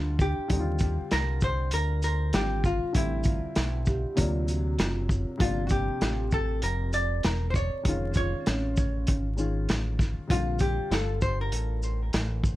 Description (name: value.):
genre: hip hop, jazz-hop.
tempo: 98 BPM.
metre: 4/4.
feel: swing 61% on 16ths.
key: Bb major.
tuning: A4 = 441 Hz.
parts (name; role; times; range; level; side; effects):
vibraphone with soft mallets; second line; 0.0-9.2 s; C4 to G4; -35 LUFS; right 2 dB; none.
dark upright piano; accompaniment; 0.0-12.6 s; C3 to F4; -35 LUFS; left 2 dB; none.
deep dub fingered electric bass; bass; 0.0-12.6 s; E1 to Eb2; -29 LUFS; equal; none.
vintage hollow-body jazz guitar; melody; 0.2-12.6 s; E4 to D5; -32 LUFS; left 1 dB; analog delay.
vintage drum kit; drums; 0.2-12.6 s; hi-hat, kick drum, shaker, snare drum; -28 LUFS; equal; none.
room: little or no reverb.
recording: vinyl crackle.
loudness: -25 LUFS.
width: side -16 dB against mid.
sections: 0.0-12.6 A section.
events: none.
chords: 0.0 Bbadd9 (rootless); 0.5 Eb69; 3.0 Am11; 4.2 Daug7; 5.4 Gm9; 7.8 F7alt; 10.3 Bbmaj9.